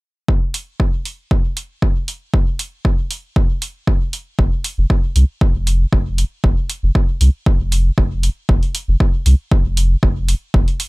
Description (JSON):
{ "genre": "dub techno", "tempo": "117 BPM", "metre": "4/4", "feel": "swing 53% on 16ths", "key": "unclear", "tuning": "A4 = 440 Hz", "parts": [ { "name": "electronic kick drum", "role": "drums", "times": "0.3-10.7 s", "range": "none", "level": "-15 LUFS", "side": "equal", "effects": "none" }, { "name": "electronic hi-hat", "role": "drums", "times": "0.5-10.9 s", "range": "none", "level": "-23 LUFS", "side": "right 2 dB", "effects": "none" }, { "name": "pure sine sub bass", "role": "bass", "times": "4.4-10.6 s", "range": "F1 to C2", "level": "-14 LUFS", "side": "equal", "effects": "sidechain pumping" } ], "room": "little or no reverb", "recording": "none", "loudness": "-15 LUFS", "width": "side -24 dB against mid", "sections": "0.3-8.5 A section; 8.5-10.9 B section", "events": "none", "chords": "none" }